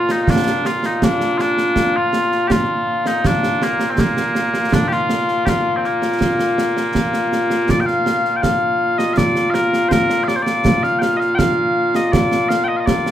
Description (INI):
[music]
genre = scottish traditional, Scottish pipe music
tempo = 81 BPM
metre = 2/4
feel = straight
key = Bb major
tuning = A4 = 440 Hz
[part]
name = mellow small bagpipes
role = melody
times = 0.0-13.1 s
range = Bb2 to G5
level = -16 LUFS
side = left 1 dB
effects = none
[part]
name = concert snare drum and concert bass drum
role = drums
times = 0.1-13.1 s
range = none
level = -20 LUFS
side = right 2 dB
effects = none
[sound]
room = moderate studio reverb, RT60 0.5 s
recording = band playing live in one room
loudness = -15 LUFS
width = side -11 dB against mid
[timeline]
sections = 0.0-7.7 A section; 7.7-13.1 A section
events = none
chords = none